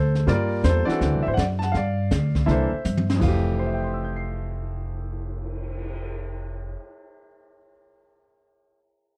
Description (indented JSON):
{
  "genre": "jazz piano trio",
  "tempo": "163 BPM",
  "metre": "4/4",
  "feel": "swing 66% on 8ths",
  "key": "F major",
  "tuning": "A4 = 440 Hz",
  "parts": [
    { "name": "clear concert grand piano", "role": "melody", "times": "0.0-7.7 s", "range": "F2 to C7", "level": "-28 LUFS", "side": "equal", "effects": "none" },
    { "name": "upright bass", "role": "bass", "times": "0.0-6.7 s", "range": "F1 to G2", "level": "-27 LUFS", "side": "equal", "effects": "none" },
    { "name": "jazz brush drum kit", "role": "drums", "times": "0.2-6.1 s", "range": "brushed snare drum, crash cymbal, cymbal swell, hi-hat, kick drum, snare drum, toms", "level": "-32 LUFS", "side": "equal", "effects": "none" }
  ],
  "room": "light reverb",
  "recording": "dark, warm production",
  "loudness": "-24 LUFS",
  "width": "mono",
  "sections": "0.0-3.2 A section; 3.2-6.2 B section",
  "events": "drum fill 2.8-3.2",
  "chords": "0.3 Gm9; 1.0 D9; 1.7 G5; 2.5 C13; 3.2 Fmaj9"
}